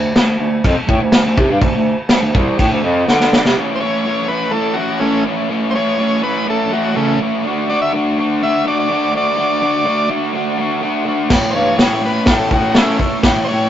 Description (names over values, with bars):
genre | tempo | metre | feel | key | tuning
garage rock duo or trio | 124 BPM | 4/4 | straight | A major | A4 = 444 Hz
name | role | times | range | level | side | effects
crunchy overdriven guitar | riff | 0.0-13.7 s | A2 to D5 | -17 LUFS | equal | none
warm bass clarinet | bass | 0.0-3.6, 11.3-13.7 s | C2 to A3 | -18 LUFS | equal | tube saturation
vintage drum kit | drums | 0.2-3.6, 11.3-13.4 s | crash cymbal, hi-hat, kick drum, snare drum | -14 LUFS | equal | none
overdriven combo organ | melody | 3.8-13.7 s | C#3 to E5 | -18 LUFS | left 1 dB | none
room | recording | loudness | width
light reverb | rough rehearsal-room recording, tube saturation, nothing above 7.7 kHz | -13 LUFS | side -10 dB against mid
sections
0.0-3.6 A section; 3.6-13.7 B section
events
drum fill 3.1-3.6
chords
0.0 D5; 3.6 A; 7.4 D; 11.3 A